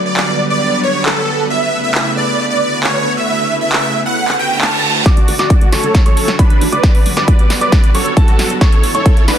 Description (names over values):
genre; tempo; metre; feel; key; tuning
uplifting trance; 135 BPM; 4/4; straight; D major; A4 = 439 Hz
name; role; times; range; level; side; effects
supersaw pad; sustained chords; 0.0-9.4 s; C#3 to B4; -20 LUFS; right 1 dB; sidechain pumping
supersaw chords; melody; 0.1-9.4 s; D4 to A5; -16 LUFS; right 1 dB; ensemble chorus, cassette tape, sidechain pumping, low-pass filter, ping-pong delay
big-room dance drum kit; drums; 0.2-9.4 s; handclaps, hi-hat, snare drum; -18 LUFS; equal; high-pass filter on snare, small room ambience, sidechain pumping on hats, high-pass filter on hats
reverse cymbal and riser; sound effects; 4.3-9.4 s; none; -22 LUFS; right 3 dB; none
bright baby grand piano; second line; 5.1-9.4 s; A5 to D6; -22 LUFS; right 2 dB; sidechain pumping, low-pass filter, ping-pong delay
electronic kick drum; drums; 5.1-9.1 s; none; -10 LUFS; equal; small room ambience
plucky analog bass; bass; 5.2-9.3 s; D1 to A2; -26 LUFS; equal; sidechain pumping, high-pass filter
room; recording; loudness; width
digital ambience; dense, heavily limited modern master; -11 LUFS; side -10 dB against mid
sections
0.0-5.1 A section; 5.1-9.4 B section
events
reverse cymbal 4.3-5.1; build-up 5.1-9.4; drum fill 5.1-9.4; filter sweep on supersaw synth 5.1-9.4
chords
0.0 Gmaj7; 1.5 Aadd9; 2.4 Bm7; 3.3 Aadd9; 4.2 Bm7; 5.1 Dmaj7; 6.8 Gmaj7; 8.6 Aadd9